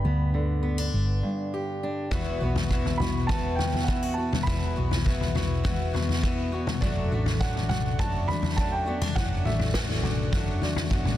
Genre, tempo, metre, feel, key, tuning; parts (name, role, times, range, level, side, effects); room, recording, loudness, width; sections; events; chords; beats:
indie folk with a building arrangement; 102 BPM; 4/4; straight; A4 = 440 Hz
dark upright piano; melody; 0.0-10.6 s; D5 to B5; -34 LUFS; right 3 dB; analog delay
fingerpicked steel-string acoustic guitar; accompaniment; 0.0-11.2 s; E2 to G4; -32 LUFS; equal
hollow-body short-scale fingered electric bass; bass; 0.0-11.2 s; E1 to D2; -28 LUFS; equal
picked swing-style acoustic guitar; accompaniment; 2.1-11.2 s; E3 to F#4; -34 LUFS; left 2 dB
unplugged drum kit; drums; 2.1-11.2 s; kick drum, snare drum, toms; -26 LUFS; left 1 dB; soft clipping on snare
light reverb; dense, heavily limited modern master; -24 LUFS; side -13 dB against mid
0.0-11.2 A section
0.0 G; 2.1 Esus2; 6.8 D/F#
0.34 0.94 1.53 | 2.12 2.71 3.29 3.88 | 4.47 5.06 5.65 6.24 | 6.82 7.41 7.99 8.58 | 9.16 9.74 10.33 10.91